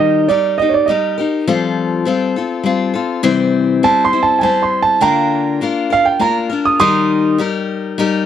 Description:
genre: rock.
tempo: 101 BPM.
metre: 3/4.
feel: straight.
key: unclear.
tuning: A4 = 435 Hz.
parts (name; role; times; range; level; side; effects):
warm grand piano; melody; 0.0-7.4 s; Db5 to Eb6; -14 LUFS; right 6 dB; none.
picked steel-string acoustic guitar; accompaniment; 0.0-8.3 s; C3 to C5; -15 LUFS; left 5 dB; none.
room: light reverb.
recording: dry, close 1970s-style studio recording.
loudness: -13 LUFS.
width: side -9 dB against mid.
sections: 0.0-8.3 A section.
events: grand piano solo 0.0-8.3.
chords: 0.0 Eb; 1.5 Fadd9; 3.2 C; 5.0 Bb/D; 6.8 Eb.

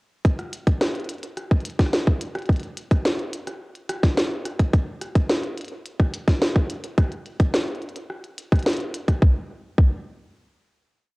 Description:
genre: IDM.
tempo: 107 BPM.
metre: 4/4.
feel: straight.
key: none.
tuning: none.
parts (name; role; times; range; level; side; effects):
electronic kick drum; drums; 0.2-9.9 s; none; -19 LUFS; equal; none.
glitchy drum kit; drums; 0.2-9.2 s; hi-hat, rim click, snare drum; -26 LUFS; equal; none.
room: light reverb.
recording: home recording on cassette.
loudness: -20 LUFS.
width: side -26 dB against mid.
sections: 0.2-9.2 groove; 9.2-11.2 final hit.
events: none.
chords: none.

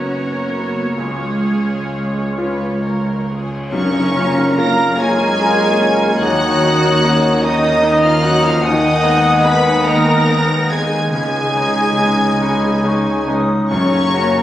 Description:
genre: cinematic, emotional film score for orchestra.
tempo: 42-51 BPM (dotted quarters).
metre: 6/8.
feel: rubato.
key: F# major.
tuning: A4 = 439 Hz.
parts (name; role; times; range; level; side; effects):
dark studio violin section; melody; 0.0-14.4 s; G#4 to B6; -24 LUFS; equal; none.
dark studio violin section; second line; 0.0-14.4 s; G#4 to B5; -23 LUFS; right 1 dB; none.
bright grand piano; accompaniment; 0.0-14.4 s; C#2 to F#4; -21 LUFS; left 1 dB; none.
warm studio viola section; accompaniment; 0.0-14.4 s; C#4 to C#5; -23 LUFS; right 1 dB; none.
concert harp; arpeggios; 0.0-14.4 s; F#2 to D#5; -27 LUFS; left 2 dB; none.
rich studio double bass section; bass; 0.0-14.4 s; F#1 to D#2; -21 LUFS; right 1 dB; none.
warm studio cello section; bass; 0.0-14.4 s; F#2 to C#4; -24 LUFS; right 1 dB; none.
cymbal swell and tam-tam; percussion; 1.0-7.0 s; none; -29 LUFS; equal; none.
mellow clarinet; second line; 3.7-13.0 s; A#4 to G#5; -21 LUFS; left 1 dB; none.
mellow silver concert flute; second line; 3.7-14.4 s; G#5 to D#6; -25 LUFS; equal; none.
warm oboe; second line; 3.7-14.4 s; C#5 to E#5; -24 LUFS; left 1 dB; none.
warm French horn section; sustained chords; 3.7-14.4 s; C#3 to B3; -22 LUFS; left 1 dB; none.
timpani; percussion; 13.7-14.4 s; F#2; -22 LUFS; equal; none.
room: moderate concert hall reverb, RT60 2.1 s.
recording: recorded on a phone in the room, club reverb.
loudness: -13 LUFS.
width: side -12 dB against mid.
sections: 0.0-3.7 A section; 3.7-14.4 B section.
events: band accent 3.7-4.6.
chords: 0.0 Bsus2/F#; 1.0 C#; 3.7 F#maj7; 6.2 D#m7; 8.6 G#m7/D#; 11.1 C#sus2; 13.7 F#.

